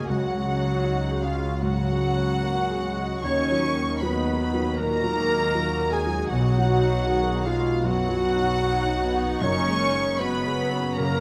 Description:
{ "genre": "cinematic, emotional film score for orchestra", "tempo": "78 BPM", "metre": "4/4", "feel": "rubato", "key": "unclear", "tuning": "A4 = 439 Hz", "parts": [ { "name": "dark studio violin section", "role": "melody", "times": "0.0-11.2 s", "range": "E#5 to C#6", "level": "-34 LUFS", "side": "equal", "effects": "none" }, { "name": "dark studio violin section", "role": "second line", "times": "0.0-11.2 s", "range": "E#5 to C#6", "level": "-36 LUFS", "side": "equal", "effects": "none" }, { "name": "mellow wooden flute", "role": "second line", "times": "0.0-11.2 s", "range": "E#4 to C#5", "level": "-35 LUFS", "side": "equal", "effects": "none" }, { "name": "warm clarinet", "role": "second line", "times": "0.0-11.2 s", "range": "E#4 to C#5", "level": "-34 LUFS", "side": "equal", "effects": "none" }, { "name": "dark concert grand piano", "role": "accompaniment", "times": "0.0-11.2 s", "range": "B1 to G#4", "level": "-32 LUFS", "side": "equal", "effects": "none" }, { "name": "warm studio viola section", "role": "accompaniment", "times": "0.0-11.2 s", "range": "D#3 to G#4", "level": "-36 LUFS", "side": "equal", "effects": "none" }, { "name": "mellow French horn section", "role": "sustained chords", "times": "0.0-11.2 s", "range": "F#3 to E#4", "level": "-32 LUFS", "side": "equal", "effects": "none" }, { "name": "concert harp", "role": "arpeggios", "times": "0.0-11.2 s", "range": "F#2 to G#5", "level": "-36 LUFS", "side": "equal", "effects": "none" }, { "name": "dark studio cello section", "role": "bass", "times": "0.0-11.2 s", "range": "F#2 to D#3", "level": "-35 LUFS", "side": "equal", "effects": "none" }, { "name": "warm studio double bass section", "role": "bass", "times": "0.0-11.2 s", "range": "F#1 to D#2", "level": "-33 LUFS", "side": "equal", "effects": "none" } ], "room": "moderate scoring stage reverb, RT60 1.6 s", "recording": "none", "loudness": "-24 LUFS", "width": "mono", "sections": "0.0-11.2 A section", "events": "none", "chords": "0.1 C#sus4; 3.2 D#m; 6.3 B; 9.4 F#sus2", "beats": "| 0.08 0.85 1.63 2.41 | 3.23 4.01 4.78 5.54 | 6.31 7.08 7.85 8.62 | 9.43 10.20 10.97" }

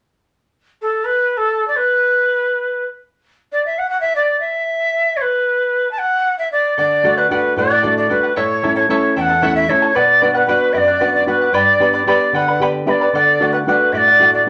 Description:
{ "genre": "andean folk, Andean ensemble", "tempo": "76 BPM (dotted quarters)", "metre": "6/8", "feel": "straight", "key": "unclear", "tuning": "A4 = 440 Hz", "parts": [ { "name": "breathy bright large quena", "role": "melody", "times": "0.8-14.5 s", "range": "A4 to A5", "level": "-16 LUFS", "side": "equal", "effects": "none" }, { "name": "charango", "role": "accompaniment", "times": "6.8-14.5 s", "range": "E4 to B5", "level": "-22 LUFS", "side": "equal", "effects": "none" }, { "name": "nylon-string guitar", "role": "accompaniment", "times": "6.8-14.5 s", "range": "E2 to G4", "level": "-24 LUFS", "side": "equal", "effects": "none" } ], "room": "wet studio ambience, RT60 0.5 s", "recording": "none", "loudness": "-16 LUFS", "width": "mono", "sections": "0.4-6.8 A section; 6.8-14.5 B section", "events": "none", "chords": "0.4 N.C.; 6.8 D; 8.4 A; 10.0 Bm; 11.5 G; 13.1 D", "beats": "| 0.44 1.23 | 2.02 2.82 | 3.61 4.40 | 5.19 5.99 | 6.78 7.57 | 8.37 9.16 | 9.96 10.75 | 11.55 12.34 | 13.14 13.94" }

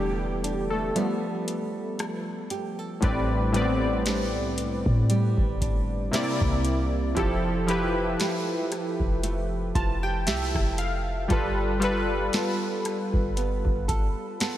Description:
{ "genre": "contemporary R&B", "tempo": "58 BPM", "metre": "4/4", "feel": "swing 54% on 16ths", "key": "A minor", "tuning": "A4 = 442 Hz", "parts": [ { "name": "warm analog keys", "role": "accompaniment", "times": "0.0-14.6 s", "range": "A2 to A5", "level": "-27 LUFS", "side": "left 1 dB", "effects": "chorus" }, { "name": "nylon-string guitar", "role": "arpeggios", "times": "0.0-14.6 s", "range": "A2 to A4", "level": "-33 LUFS", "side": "right 5 dB", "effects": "tape echo" }, { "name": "clean 808-style bass", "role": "bass", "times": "0.0-14.1 s", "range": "E1 to A2", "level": "-28 LUFS", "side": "equal", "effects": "none" }, { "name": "booming analog drum machine", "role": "drums", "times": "0.4-14.6 s", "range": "hi-hat, kick drum, rim click, snare drum", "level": "-29 LUFS", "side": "equal", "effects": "none" } ], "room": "moderate lush hall reverb, RT60 2.7 s", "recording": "dreamy mix soaked in reverb", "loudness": "-24 LUFS", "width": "side -12 dB against mid", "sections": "0.0-3.0 A section; 3.0-14.6 B section", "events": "synth keys solo 0.0-3.0; break 1.0-3.0; synth keys fill 9.2-11.3", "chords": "0.0 Em7; 1.0 G9; 3.0 Am11; 6.1 C9; 7.2 Fmaj9; 11.3 G9", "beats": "0.95 1.99 | 3.02 4.06 5.09 6.13 | 7.16 8.20 9.23 10.27 | 11.30 12.33 13.37 14.40" }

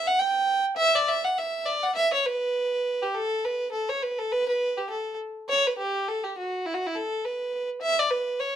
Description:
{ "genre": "celtic folk", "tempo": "205 BPM", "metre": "4/4", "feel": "swing 58% on 8ths", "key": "unclear", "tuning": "A4 = 438 Hz", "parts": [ { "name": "warm fiddle", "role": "solo", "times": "0.0-8.6 s", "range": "E4 to G5", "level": "-24 LUFS", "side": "right 1 dB", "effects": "none" } ], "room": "moderate studio ambience, RT60 0.5 s", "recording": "none", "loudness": "-24 LUFS", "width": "side -10 dB against mid", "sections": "0.0-5.5 A section; 5.5-8.6 B section", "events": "none", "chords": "none", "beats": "0.19 0.48 | 0.78 1.07 1.36 1.66 | 1.95 2.24 2.54 2.83 | 3.12 3.42 3.71 4.00 | 4.29 4.59 4.88 5.17 | 5.47 5.76 6.05 6.34 | 6.64 6.93 7.22 7.52 | 7.81 8.10 8.40" }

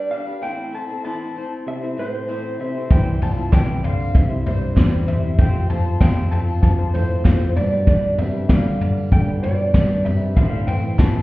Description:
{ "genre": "indie folk with a building arrangement", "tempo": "97 BPM", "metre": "4/4", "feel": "straight", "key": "C major", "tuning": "A4 = 436 Hz", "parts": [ { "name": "electric guitar through a small old amp", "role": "melody", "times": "0.0-11.2 s", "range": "C5 to A5", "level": "-27 LUFS", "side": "right 1 dB", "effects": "tremolo" }, { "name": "picked acoustic archtop guitar", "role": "accompaniment", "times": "0.0-11.2 s", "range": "A2 to C5", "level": "-29 LUFS", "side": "left 3 dB", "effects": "none" }, { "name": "warm French horn", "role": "second line", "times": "1.7-11.2 s", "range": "G2 to F3", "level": "-28 LUFS", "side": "right 3 dB", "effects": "none" }, { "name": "hollow-body short-scale fingered electric bass", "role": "bass", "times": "2.9-11.2 s", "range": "C2 to A2", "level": "-21 LUFS", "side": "equal", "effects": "none" }, { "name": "vintage brush drum kit", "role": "drums", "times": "2.9-11.1 s", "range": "kick drum, snare drum, toms", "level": "-18 LUFS", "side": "equal", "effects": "none" }, { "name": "tambourine", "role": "percussion", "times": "3.1-11.2 s", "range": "none", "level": "-57 LUFS", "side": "right 3 dB", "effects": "none" }, { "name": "group handclap", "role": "percussion", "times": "3.5-11.1 s", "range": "none", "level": "-41 LUFS", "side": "right 3 dB", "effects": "none" } ], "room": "light reverb", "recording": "heard muffled through a wall, stone room reverb, EQ", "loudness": "-17 LUFS", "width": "side -18 dB against mid", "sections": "0.0-11.2 A section", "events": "none", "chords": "0.4 Am; 2.9 C; 5.4 F; 7.6 G; 10.4 Am", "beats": "| 0.43 1.05 1.67 2.29 | 2.91 3.53 4.15 4.77 | 5.39 6.01 6.63 7.25 | 7.88 8.50 9.12 9.74 | 10.36 10.99" }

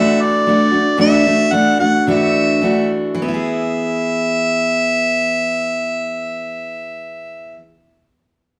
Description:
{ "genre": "rock", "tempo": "102-118 BPM", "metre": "4/4", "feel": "straight", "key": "E mixolydian", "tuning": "A4 = 440 Hz", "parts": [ { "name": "warm harmonica", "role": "melody", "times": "0.0-7.6 s", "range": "D5 to F#5", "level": "-20 LUFS", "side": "equal", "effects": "none" }, { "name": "picked steel-string acoustic guitar", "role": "accompaniment", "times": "0.0-7.7 s", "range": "D3 to G#4", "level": "-19 LUFS", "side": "equal", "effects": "none" } ], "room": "moderate large studio reverb, RT60 1.1 s", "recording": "band playing live in one room", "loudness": "-16 LUFS", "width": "mono", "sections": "0.0-3.2 A section; 3.2-7.9 B section", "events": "slowing down 0.0-3.2", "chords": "0.0 Dadd9; 3.2 E", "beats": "0.48 | 1.00 1.53 2.08 2.63 | 3.21 3.80 4.38 4.97 | 5.55 6.14 6.73 7.31" }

